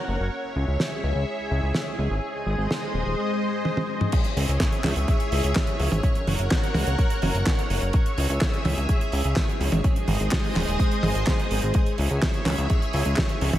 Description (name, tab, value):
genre	italo disco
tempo	126 BPM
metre	4/4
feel	straight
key	C# dorian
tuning	A4 = 438 Hz
part	string machine, full ensemble	sustained chords	0.0-13.6 s	G#3 to D#6	-28 LUFS	equal	ensemble chorus
part	fat analog bass	bass	0.1-13.6 s	D#1 to C#2	-25 LUFS	equal	tube saturation
part	damped 70s drum kit	drums	0.8-13.6 s	crash cymbal, handclaps, hi-hat, snare drum, toms	-27 LUFS	right 1 dB	studio reverb, gated reverb
part	electronic kick drum	drums	4.1-13.3 s	none	-23 LUFS	equal	studio reverb
room	light reverb, small room reverb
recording	none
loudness	-21 LUFS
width	side -13 dB against mid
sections	0.0-4.1 A section; 4.1-13.6 B section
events	drum fill 3.7-4.1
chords	0.3 C#m; 2.2 G#; 4.1 C#m; 6.0 F#; 7.9 C#m; 9.8 G#; 11.7 C#m